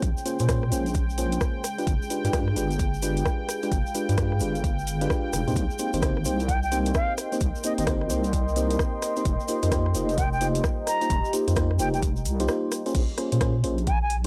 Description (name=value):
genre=UK garage, two-step garage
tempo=130 BPM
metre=4/4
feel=swing 62% on 16ths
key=Bb dorian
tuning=A4 = 440 Hz
part: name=warm analog pad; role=sustained chords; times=0.0-13.0 s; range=G5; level=-39 LUFS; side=equal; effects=chorus, tremolo, sidechain pumping
part: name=FM electric piano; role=stabs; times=0.0-14.3 s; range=Ab3 to C5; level=-32 LUFS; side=equal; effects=chorus, cassette tape
part: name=deep soft wobble bass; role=bass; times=0.0-14.3 s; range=F1 to Bb2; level=-29 LUFS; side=equal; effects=chorus
part: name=electronic kick drum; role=drums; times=0.0-14.0 s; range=none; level=-30 LUFS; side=equal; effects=overdrive, small room reverb
part: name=garage drum kit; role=drums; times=0.0-14.3 s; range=crash cymbal, hi-hat, rim click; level=-35 LUFS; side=equal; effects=overdrive, small room reverb
part: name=egg shaker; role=percussion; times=0.0-12.9 s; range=none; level=-41 LUFS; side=equal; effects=none
part: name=deep dark ambient pad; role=texture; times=0.0-12.9 s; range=Db4 to C6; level=-36 LUFS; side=equal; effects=chorus, built-in reverb, sidechain pumping
part: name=concert flute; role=melody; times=6.5-14.2 s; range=Eb5 to Bb5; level=-30 LUFS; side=equal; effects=none
room=little or no reverb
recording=dry, gritty hardware recording, transformer saturation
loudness=-25 LUFS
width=mono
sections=0.0-12.9 A section; 12.9-14.3 A section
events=drop 0.0-12.9, 12.9-14.3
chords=0.0 Bbm9; 1.6 G7b9; 5.6 Cm7; 9.3 F9sus4; 12.9 Bbm9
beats=| 0.03 0.49 0.95 1.41 | 1.87 2.33 2.79 3.26 | 3.72 4.18 4.64 5.10 | 5.56 6.03 6.49 6.95 | 7.41 7.87 8.33 8.79 | 9.26 9.72 10.18 10.64 | 11.10 11.56 12.03 12.49 | 12.95 13.41 13.87